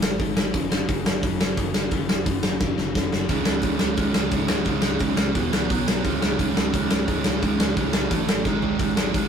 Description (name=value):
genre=punk rock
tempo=174 BPM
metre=4/4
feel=straight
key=C# minor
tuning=A4 = 439 Hz
part: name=overdriven electric guitar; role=riff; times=0.0-9.3 s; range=C#2 to B3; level=-28 LUFS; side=left 7 dB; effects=none
part: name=overdriven picked electric bass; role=bass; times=0.0-9.3 s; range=C#1 to B#1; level=-33 LUFS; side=equal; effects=none
part: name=big rock drum kit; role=drums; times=0.0-9.2 s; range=hi-hat, kick drum, snare drum, toms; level=-22 LUFS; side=equal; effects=none
part: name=overdriven electric guitar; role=riff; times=3.3-9.3 s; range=C#2 to B3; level=-25 LUFS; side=right 6 dB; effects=none
room=light reverb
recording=rough rehearsal-room recording, warm saturation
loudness=-20 LUFS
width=side -7 dB against mid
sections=0.0-9.3 A section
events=drum fill 2.6-3.3, 8.5-8.8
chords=0.0 G#5; 0.5 F#5; 3.3 C#5; 5.4 E5; 5.7 B5; 6.0 C#5; 8.1 A5; 8.5 G#5